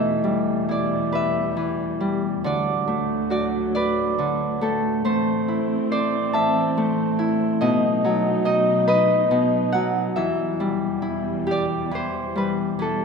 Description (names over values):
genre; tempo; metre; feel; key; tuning
children's music, lullaby; 46 BPM (dotted quarters); 6/8; rubato; E minor; A4 = 440 Hz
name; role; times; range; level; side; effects
Celtic harp; melody; 0.0-13.0 s; B2 to A5; -20 LUFS; left 1 dB; none
dark studio string section; sustained chords; 0.0-13.0 s; D2 to D#4; -29 LUFS; right 4 dB; none
room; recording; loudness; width
wet concert hall reverb, RT60 2.5 s; minimal, uncompressed stereo recording; -20 LUFS; side -5 dB against mid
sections
0.0-2.4 A section; 2.4-12.8 B section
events
none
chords
0.0 Em; 2.4 D; 5.0 Am; 7.6 B; 10.2 Em